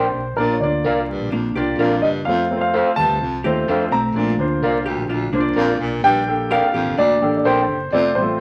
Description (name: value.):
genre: soul.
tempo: 127 BPM.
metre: 4/4.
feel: straight.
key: Bb major.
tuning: A4 = 440 Hz.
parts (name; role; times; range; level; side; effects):
warm grand piano; melody; 0.0-8.4 s; Bb4 to Bb5; -22 LUFS; equal; none.
warm upright piano; accompaniment; 0.0-8.4 s; G3 to D5; -25 LUFS; equal; none.
electric guitar through a small old amp; stabs; 0.0-7.6 s; A4 to G5; -24 LUFS; equal; none.
vintage muted fingered electric bass; bass; 0.0-8.4 s; F1 to F2; -30 LUFS; equal; none.
breathy baritone saxophone; riff; 0.4-8.1 s; D2 to Bb2; -28 LUFS; equal; none.
hollow-body jazz guitar; riff; 1.3-7.7 s; A3 to Bb4; -27 LUFS; equal; none.
room: wet studio reverb, RT60 0.8 s.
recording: vinyl crackle.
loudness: -19 LUFS.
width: mono.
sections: 0.0-8.4 A section.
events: none.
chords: 0.4 Bb; 2.3 F; 4.2 Bb; 6.0 Gm.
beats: | 0.38 0.85 1.32 1.79 | 2.26 2.74 3.21 3.68 | 4.15 4.62 5.09 5.57 | 6.04 6.51 6.98 7.45 | 7.92 8.40.